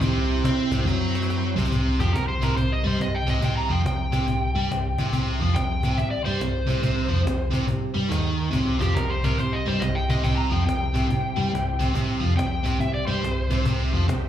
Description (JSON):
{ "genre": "blues rock power trio and southern rock", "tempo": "141 BPM", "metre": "4/4", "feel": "swing 66% on 8ths", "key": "C mixolydian", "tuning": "A4 = 440 Hz", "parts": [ { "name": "overdriven tonewheel organ", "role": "sustained chords", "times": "0.0-1.7, 8.5-14.3 s", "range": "C4 to G5", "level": "-35 LUFS", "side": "right 2 dB", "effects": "chorus vibrato, slow rotary speaker" }, { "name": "biting overdriven guitar", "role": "riff", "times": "0.0-14.3 s", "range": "C3 to C4", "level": "-27 LUFS", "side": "right 1 dB", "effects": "slapback echo" }, { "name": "hollow-body short-scale picked electric bass", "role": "bass", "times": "0.0-14.3 s", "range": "C2 to C3", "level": "-24 LUFS", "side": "equal", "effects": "none" }, { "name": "cajon", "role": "drums", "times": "0.0-14.2 s", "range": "none", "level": "-31 LUFS", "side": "equal", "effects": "none" }, { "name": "overdriven slide guitar", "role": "melody", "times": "2.0-13.6 s", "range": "G4 to Bb5", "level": "-29 LUFS", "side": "left 1 dB", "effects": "slapback echo, analog delay" } ], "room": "light reverb, digital ambience", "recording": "live gig heard through the venue's PA, club reverb", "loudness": "-21 LUFS", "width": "side -10 dB against mid", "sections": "0.0-1.7 A section; 1.7-14.3 B section", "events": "drum fill 0.9-1.7", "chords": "0.0 C" }